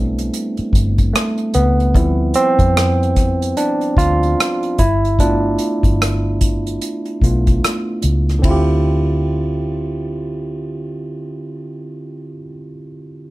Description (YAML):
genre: R&B, neo-soul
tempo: 74 BPM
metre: 4/4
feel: swing 61% on 16ths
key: D dorian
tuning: A4 = 442 Hz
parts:
  - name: barky tine electric piano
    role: accompaniment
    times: 0.0-13.3 s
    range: D3 to G4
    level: -19 LUFS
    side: right 1 dB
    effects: none
  - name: vintage muted fingered electric bass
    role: bass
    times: 0.0-12.4 s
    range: G1 to F2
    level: -18 LUFS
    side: equal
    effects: none
  - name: unplugged drum kit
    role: drums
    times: 0.2-8.7 s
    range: hi-hat, kick drum, ride cymbal, rim click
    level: -18 LUFS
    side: equal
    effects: none
room: little or no reverb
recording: none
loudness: -14 LUFS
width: side -18 dB against mid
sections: 0.0-8.4 A section; 8.4-11.7 B section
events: tine electric piano solo 0.0-8.4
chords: 0.0 Am11; 1.9 Dm11; 4.8 G7; 8.4 Dm11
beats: 0.33 1.14 | 1.95 2.76 3.57 4.38 | 5.19 6.00 6.81 7.62 | 8.44 9.25 10.06 10.87